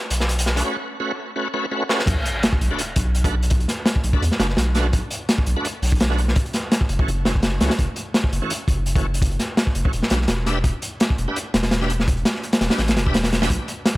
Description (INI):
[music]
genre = drum and bass, jungle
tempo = 168 BPM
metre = 4/4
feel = swing 55% on 16ths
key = B minor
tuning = A4 = 436 Hz
[part]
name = saturated sub bass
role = bass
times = 0.1-13.6 s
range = E1 to E2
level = -22 LUFS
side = equal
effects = none
[part]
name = crunchy breakbeat drum kit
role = drums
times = 0.1-14.0 s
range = crash cymbal, hi-hat, kick drum, snare drum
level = -20 LUFS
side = equal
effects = high-pass filter on kick, high-pass filter on hats, high-pass filter on cymbals, high-pass filter on snare, high-pass filter on room
[part]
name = bright tonewheel organ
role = stabs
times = 0.6-13.5 s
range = E3 to E5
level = -28 LUFS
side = right 1 dB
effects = overdrive, chorus vibrato, slow rotary speaker, dub echo
[part]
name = sub drop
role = sound effects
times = 2.1-3.5 s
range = none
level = -30 LUFS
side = equal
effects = none
[sound]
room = little or no reverb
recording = none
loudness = -18 LUFS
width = side -18 dB against mid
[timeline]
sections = 0.0-2.1 A section; 2.1-14.0 B section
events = build-up 0.0-2.1; drum fill 0.0-0.6, 1.9; break 0.6-2.1; drop 2.1-14.0; impact 2.1-3.5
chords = 0.0 Bm7; 0.6 F#m; 2.1 Bm7; 6.4 F#m7; 9.9 Em7